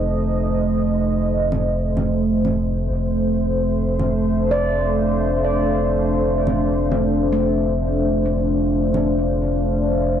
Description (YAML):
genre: ambient dub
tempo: 97 BPM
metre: 4/4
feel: swing 56% on 16ths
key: unclear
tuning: A4 = 436 Hz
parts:
  - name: deep dark ambient pad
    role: sustained chords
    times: 0.0-10.2 s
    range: A3 to F5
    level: -19 LUFS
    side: equal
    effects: chorus, built-in reverb, cassette tape
  - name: soft dub sub bass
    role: bass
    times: 0.0-10.2 s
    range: F1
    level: -23 LUFS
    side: left 1 dB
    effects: tube saturation
  - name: congas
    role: drums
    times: 1.5-9.1 s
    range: none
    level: -27 LUFS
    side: right 1 dB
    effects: overdrive, cassette tape, dub echo
  - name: handpan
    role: arpeggios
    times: 4.5-9.6 s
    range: A3 to D5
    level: -26 LUFS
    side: right 5 dB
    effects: cassette tape, analog delay
room: moderate spring reverb, RT60 2.4 s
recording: home recording on cassette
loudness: -17 LUFS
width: side -9 dB against mid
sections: 0.0-10.2 A section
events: none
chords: 0.0 F7; 2.9 Dm7/F